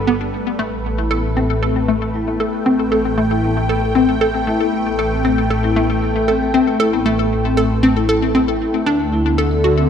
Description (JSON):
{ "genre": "ambient", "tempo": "116 BPM", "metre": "4/4", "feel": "straight", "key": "A dorian", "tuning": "A4 = 438 Hz", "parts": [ { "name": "lush unison pad", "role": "sustained chords", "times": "0.0-9.9 s", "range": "D3 to G5", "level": "-22 LUFS", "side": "equal", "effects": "chorus, phaser" }, { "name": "vibraphone with soft mallets", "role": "arpeggios", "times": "0.0-9.9 s", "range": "A3 to A4", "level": "-21 LUFS", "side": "left 2 dB", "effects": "auto-pan, ping-pong delay" }, { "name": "fat analog bass", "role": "bass", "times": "0.0-9.9 s", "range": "G1 to D2", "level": "-22 LUFS", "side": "equal", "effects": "none" }, { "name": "hollow square pluck", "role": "riff", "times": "0.1-9.8 s", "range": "A3 to A4", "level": "-18 LUFS", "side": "left 1 dB", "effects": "analog chorus, ping-pong delay" } ], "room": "moderate echo chamber reverb, RT60 2.2 s", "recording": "echo-heavy mix", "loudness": "-15 LUFS", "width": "side -8 dB against mid", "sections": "0.0-9.9 A section", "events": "fade-in on vibraphone 0.0-9.9", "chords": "0.0 Gmaj7; 0.6 Am7; 8.9 D" }